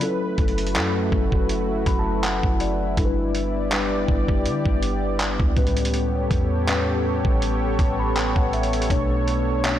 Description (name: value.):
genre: contemporary R&B.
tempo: 81 BPM.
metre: 4/4.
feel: swing 54% on 16ths.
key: unclear.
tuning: A4 = 441 Hz.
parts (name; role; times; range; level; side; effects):
mellow tine electric piano; accompaniment; 0.0-9.8 s; A2 to B5; -25 LUFS; left 4 dB; medium stereo tremolo.
lush unison pad; sustained chords; 0.0-9.8 s; A3 to D5; -27 LUFS; right 2 dB; chorus.
dusty soul sampler-style drum kit; drums; 0.0-9.8 s; handclaps, hi-hat, kick drum; -23 LUFS; right 1 dB; none.
clean 808-style bass; bass; 0.4-9.8 s; F#1 to D3; -26 LUFS; right 1 dB; none.
room: little or no reverb.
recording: blown-out, overdriven recording, overdrive.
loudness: -20 LUFS.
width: side -11 dB against mid.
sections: 0.0-9.8 A section.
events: tine electric piano fill 1.5-3.0.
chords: 0.0 F#m7; 3.0 G6; 5.6 A9; 8.9 Bm9.